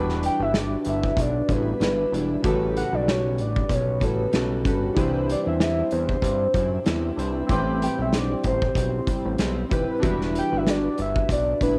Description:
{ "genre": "indie pop, bedroom pop", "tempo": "95 BPM", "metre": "4/4", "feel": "swing 55% on 16ths", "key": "unclear", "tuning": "A4 = 440 Hz", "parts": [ { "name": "fingerpicked plugged-in steel-string acoustic guitar", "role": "accompaniment", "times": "0.0-11.8 s", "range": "A2 to B4", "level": "-32 LUFS", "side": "equal", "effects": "analog chorus, warbly pitch drift" }, { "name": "warbly lo-fi synth keys", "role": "accompaniment", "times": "0.0-11.8 s", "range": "C#3 to C5", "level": "-31 LUFS", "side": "equal", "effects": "chorus, phaser" }, { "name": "fat analog bass", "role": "bass", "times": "0.0-11.8 s", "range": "D#1 to G2", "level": "-30 LUFS", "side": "equal", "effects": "none" }, { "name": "loose indie drum kit", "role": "drums", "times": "0.1-11.8 s", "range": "hi-hat, kick drum, snare drum", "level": "-29 LUFS", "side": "equal", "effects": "cassette tape" }, { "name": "soft octave-layered synth lead", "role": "melody", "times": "0.3-11.8 s", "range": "B4 to G5", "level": "-29 LUFS", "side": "equal", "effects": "phaser, subtle chorus, cassette tape, analog delay" } ], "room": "light reverb, small room ambience", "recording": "home recording on cassette", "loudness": "-24 LUFS", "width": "mono", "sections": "0.0-11.8 A section", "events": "none", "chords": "0.0 Em7; 2.4 A13; 5.0 Cmaj7; 7.5 Am9; 10.0 Em7", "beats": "0.54 1.17 1.80 | 2.44 3.07 3.70 4.33 | 4.96 5.60 6.23 6.86 | 7.50 8.13 8.76 9.39 | 10.03 10.66 11.29" }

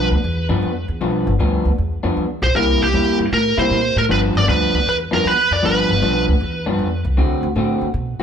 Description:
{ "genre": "electric blues shuffle", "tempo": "156 BPM", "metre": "4/4", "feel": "swing 66% on 8ths", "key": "G mixolydian", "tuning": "A4 = 440 Hz", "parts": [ { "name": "biting lead guitar", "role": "melody", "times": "0.0-0.1, 2.4-6.2 s", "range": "G4 to D5", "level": "-18 LUFS", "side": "right 2 dB", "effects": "overdrive, tape echo" }, { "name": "electric guitar through a small old amp", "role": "riff", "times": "0.0-8.2 s", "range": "G2 to F#4", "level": "-21 LUFS", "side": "left 2 dB", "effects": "none" }, { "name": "upright bass", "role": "bass", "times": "0.0-8.2 s", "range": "G1 to C3", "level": "-20 LUFS", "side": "equal", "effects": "none" } ], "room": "moderate large studio reverb, RT60 1.2 s", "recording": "band playing live in one room", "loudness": "-15 LUFS", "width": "side -8 dB against mid", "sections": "0.0-8.2 A section", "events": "none", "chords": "0.0 G7; 2.5 C7; 4.1 G7; 7.2 D7", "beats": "0.24 0.62 | 1.01 1.39 1.78 2.17 | 2.55 2.94 3.32 3.71 | 4.09 4.48 4.86 5.25 | 5.63 6.02 6.40 6.79 | 7.17 7.56 7.94" }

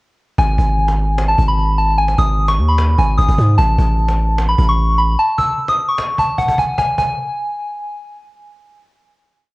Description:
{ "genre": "hip hop, trap", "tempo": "150 BPM", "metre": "4/4", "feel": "half-time", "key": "G# phrygian", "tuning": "A4 = 440 Hz", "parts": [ { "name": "soft synth bell", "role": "melody", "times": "0.4-7.9 s", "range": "F#5 to E6", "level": "-17 LUFS", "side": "equal", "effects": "chorus, tremolo, cassette tape, analog delay" }, { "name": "long sustained 808-style bass", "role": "bass", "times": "0.4-5.2 s", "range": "G#1 to G#2", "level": "-14 LUFS", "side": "equal", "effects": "none" }, { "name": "cajon", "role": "drums", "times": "0.4-7.1 s", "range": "none", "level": "-24 LUFS", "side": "equal", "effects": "none" } ], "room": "little or no reverb", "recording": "home recording on cassette", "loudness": "-13 LUFS", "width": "side -21 dB against mid", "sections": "0.4-6.8 hook; 6.8-9.5 final note", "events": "none", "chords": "0.4 G#5; 3.6 N.C.", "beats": "| 0.38 0.78 1.18 1.58 | 1.98 2.38 2.78 3.18 | 3.58 3.98 4.38 4.78 | 5.18 5.58 5.98 6.38 | 6.78 7.18 7.58" }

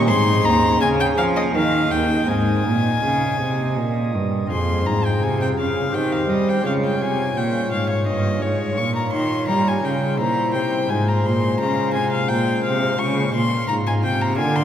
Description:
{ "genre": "classical, baroque-style sonata movement with continuo", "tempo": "84 BPM", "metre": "3/4", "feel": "rubato", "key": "Ab major, F minor from 4.5 s", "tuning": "A4 = 440 Hz", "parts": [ { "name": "pipe organ, sparkling flutes", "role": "accompaniment", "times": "0.0-14.6 s", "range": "Eb2 to F5", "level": "-22 LUFS", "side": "equal", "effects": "none" }, { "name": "rich cello", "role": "bass", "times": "0.0-14.6 s", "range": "Eb2 to G3", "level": "-22 LUFS", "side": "right 1 dB", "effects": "none" }, { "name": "warm violin", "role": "melody", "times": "0.1-14.6 s", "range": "Db5 to Db6", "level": "-23 LUFS", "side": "left 2 dB", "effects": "none" } ], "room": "wet cathedral reverb, RT60 4.7 s", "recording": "recorded in a church or concert hall", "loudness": "-18 LUFS", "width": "side -9 dB against mid", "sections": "0.0-4.5 A section; 4.5-14.6 A section", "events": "none", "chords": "0.1 Ab; 0.8 Db; 1.5 Eb; 2.3 Ab; 4.5 Fm; 5.9 Cm/Eb; 6.7 Db; 8.8 Gm7b5/Bb; 10.2 C7/Bb; 10.9 Fm/Ab", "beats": "| 0.09 0.81 1.54 | 2.29 3.04 3.77 | 4.51 5.23 5.94 | 6.65 7.36 8.07 | 8.78 9.49 10.20 | 10.91 11.61 12.30 | 12.99 13.69 14.39" }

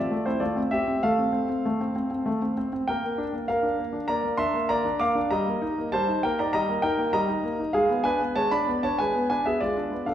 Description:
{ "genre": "classical-period piano sonatina", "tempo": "98 BPM", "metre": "4/4", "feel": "straight", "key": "unclear", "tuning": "A4 = 441 Hz", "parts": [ { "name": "warm concert grand piano", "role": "solo", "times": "0.0-10.1 s", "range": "G3 to D6", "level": "-23 LUFS", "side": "equal", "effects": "none" } ], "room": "wet recital hall reverb, RT60 1.6 s", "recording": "heard from further back in the room", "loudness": "-23 LUFS", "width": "side -10 dB against mid", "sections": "0.0-10.1 A section", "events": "none", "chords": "0.4 F/A; 2.9 Bb; 5.3 Eb/G; 7.7 G#dim7", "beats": "| 0.42 1.04 1.65 2.26 | 2.87 3.48 4.09 4.69 | 5.30 5.91 6.52 7.13 | 7.74 8.35 8.97 9.60" }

